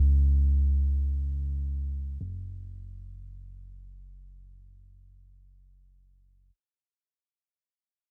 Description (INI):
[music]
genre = synthwave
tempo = free time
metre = none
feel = none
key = unclear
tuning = A4 = 439 Hz
[part]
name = fat analog bass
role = bass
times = 0.0-6.5 s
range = F#1 to C#2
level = -29 LUFS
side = equal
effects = none
[sound]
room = little or no reverb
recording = none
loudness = -28 LUFS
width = mono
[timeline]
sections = 0.0-6.5 A section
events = fade-out 0.0-6.5; filter sweep on analog synth bass 0.0-6.5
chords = none